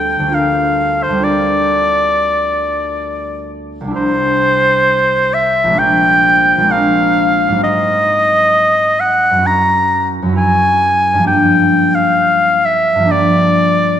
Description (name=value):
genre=classical, impressionist duo for oboe and harp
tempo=66 BPM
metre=4/4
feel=rubato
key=unclear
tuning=A4 = 440 Hz
part: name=clear oboe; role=melody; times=0.0-14.0 s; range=C5 to Bb5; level=-12 LUFS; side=equal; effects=none
part: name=concert harp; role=accompaniment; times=0.0-14.0 s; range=Bb1 to Bb4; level=-17 LUFS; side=equal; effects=none
room=moderate concert hall reverb, RT60 2.0 s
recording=none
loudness=-10 LUFS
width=side -10 dB against mid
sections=0.0-14.0 A section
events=none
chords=0.4 Bb69/D; 4.0 C9; 5.8 Bb9; 7.6 Ab9; 9.5 Gb9; 11.3 Gm7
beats=| 0.36 1.25 2.17 3.08 | 3.97 4.89 5.80 6.73 | 7.64 8.55 9.46 10.38 | 11.28 12.19 13.12